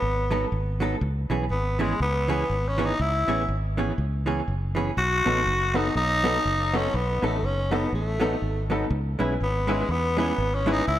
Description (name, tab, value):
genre	ska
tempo	122 BPM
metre	4/4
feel	swing 59% on 8ths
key	C# minor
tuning	A4 = 439 Hz
part	growling tenor saxophone	melody	0.0-11.0 s	G#3 to F#4	-26 LUFS	left 1 dB	slapback echo
part	fingered electric bass	bass	0.0-11.0 s	F#1 to E2	-27 LUFS	equal	none
part	hollow-body jazz guitar	accompaniment	0.3-10.8 s	E3 to A4	-29 LUFS	right 2 dB	slapback echo
part	warm upright piano	stabs	5.3-10.8 s	B3 to B4	-30 LUFS	left 2 dB	slapback echo
room	light reverb, small room reverb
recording	none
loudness	-22 LUFS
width	side -12 dB against mid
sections	0.0-11.0 A section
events	none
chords	0.0 B7; 1.0 C#m7; 5.0 B7; 8.9 C#m7